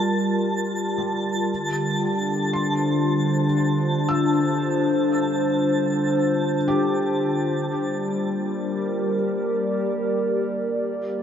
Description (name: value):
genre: ambient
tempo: 58 BPM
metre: 3/4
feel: straight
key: G dorian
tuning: A4 = 441 Hz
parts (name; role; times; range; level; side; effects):
- warbly tape-like pad; sustained chords; 0.0-11.2 s; D3 to A5; -22 LUFS; left 1 dB; chorus, built-in reverb
- felt-muted upright piano; arpeggios; 0.0-9.1 s; G3 to E6; -32 LUFS; right 1 dB; lush chorus, tape echo
- analog drone; drone; 0.0-11.2 s; G3 to Bb3; -31 LUFS; equal; chorus
- twinkling granular texture; texture; 0.0-7.7 s; A5; -31 LUFS; right 1 dB; built-in reverb
room: wet huge ambient reverb, RT60 8.8 s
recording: dreamy mix soaked in reverb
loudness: -20 LUFS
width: side -8 dB against mid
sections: 0.0-7.7 A section; 7.7-11.2 B section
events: fade-in on felt piano 0.0-7.7; filter sweep on ambient pad 0.0-7.7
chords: 0.0 Gm9; 1.5 Dm7; 7.7 Gm